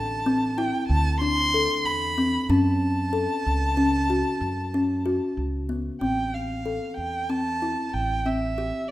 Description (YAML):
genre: contemporary instrumental, chamber music in an uneven meter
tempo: 187 BPM (eighths)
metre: 11/8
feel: straight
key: unclear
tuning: A4 = 440 Hz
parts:
  - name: warm violin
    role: melody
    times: 0.0-8.9 s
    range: D5 to C6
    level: -27 LUFS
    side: right 1 dB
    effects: none
  - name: upright bass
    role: bass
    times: 0.0-8.7 s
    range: A1 to F#2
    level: -28 LUFS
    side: right 1 dB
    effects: none
  - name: kalimba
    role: arpeggios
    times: 0.3-8.9 s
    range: B3 to A4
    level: -25 LUFS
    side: left 1 dB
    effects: none
room: moderate recital hall reverb, RT60 1.4 s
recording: none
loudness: -22 LUFS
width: side -15 dB against mid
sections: 0.0-6.0 A section; 6.0-8.9 B section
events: none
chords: 0.0 Dsus2; 2.5 F#m; 6.0 Am7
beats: 0.25 0.57 0.89 1.21 1.53 1.85 2.17 | 2.49 2.81 3.13 3.45 3.77 4.09 4.42 4.74 5.05 5.38 5.70 | 6.02 6.34 6.66 6.98 7.30 7.62 7.94 8.26 8.58 8.90